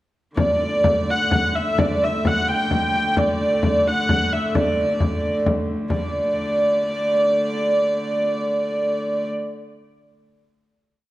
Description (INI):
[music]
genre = medieval dance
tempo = 85-94 BPM (dotted quarters)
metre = 6/8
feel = straight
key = D major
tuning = A4 = 438 Hz
[part]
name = dark hurdy-gurdy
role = melody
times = 0.4-9.3 s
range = D5 to G5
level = -20 LUFS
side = equal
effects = none
[part]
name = rich hurdy-gurdy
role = drone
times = 0.4-9.3 s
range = D3 to A3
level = -27 LUFS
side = equal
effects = none
[part]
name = frame drum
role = percussion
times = 0.4-6.1 s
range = none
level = -23 LUFS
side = left 1 dB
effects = none
[sound]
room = wet recital hall reverb, RT60 1.8 s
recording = dark, warm production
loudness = -18 LUFS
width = side -16 dB against mid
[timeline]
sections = 0.4-5.9 A section; 5.9-8.5 final chord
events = speeding up 0.4-8.5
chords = none